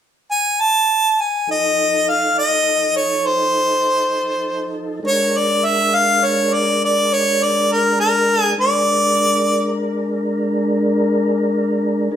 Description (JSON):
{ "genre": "blues", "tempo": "68 BPM (dotted quarters)", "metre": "12/8", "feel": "straight", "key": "Bb mixolydian", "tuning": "A4 = 440 Hz", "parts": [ { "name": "bright harmonica", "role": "melody", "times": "0.3-9.7 s", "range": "Bb4 to A5", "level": "-15 LUFS", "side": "equal", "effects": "none" }, { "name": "tonewheel organ", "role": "sustained chords", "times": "1.5-12.2 s", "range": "F3 to Bb4", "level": "-20 LUFS", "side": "equal", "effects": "slow rotary speaker, chorus vibrato" } ], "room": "wet stone room reverb, RT60 1.3 s", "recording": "band playing live in one room", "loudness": "-15 LUFS", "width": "side -9 dB against mid", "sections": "0.0-1.5 A section; 1.5-5.0 B section; 5.0-12.2 C section", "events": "none", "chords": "0.0 N.C.; 1.5 F7; 5.0 Bb7", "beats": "0.59 | 1.48 2.37 3.26 4.15 | 5.03 5.92 6.81 7.70 | 8.58 9.47 10.35 11.24 | 12.12" }